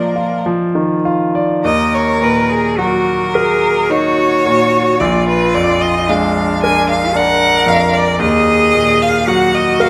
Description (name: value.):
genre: classical, slow romantic movement for piano trio.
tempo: 50-59 BPM.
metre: 3/4.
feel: rubato.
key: Eb minor.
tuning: A4 = 440 Hz.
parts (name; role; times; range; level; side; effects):
clear violin; melody; 0.0-9.9 s; Ab4 to Ab5; -18 LUFS; equal; none.
rich cello; second line; 0.0-9.9 s; Bb3 to Bb4; -18 LUFS; equal; none.
bright concert grand piano; accompaniment; 0.0-9.9 s; Bb1 to Eb5; -18 LUFS; equal; none.
room: moderate scoring stage reverb, RT60 1.6 s.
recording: close, detailed microphones.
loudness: -14 LUFS.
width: mono.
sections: 0.0-1.6 A section; 1.6-9.9 B section.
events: none.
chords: 0.0 Bb; 1.6 Ebm; 5.0 Bb7; 8.2 Ebm.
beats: 0.46 | 1.64 2.78 3.90 | 5.00 6.09 7.15 | 8.20 9.27.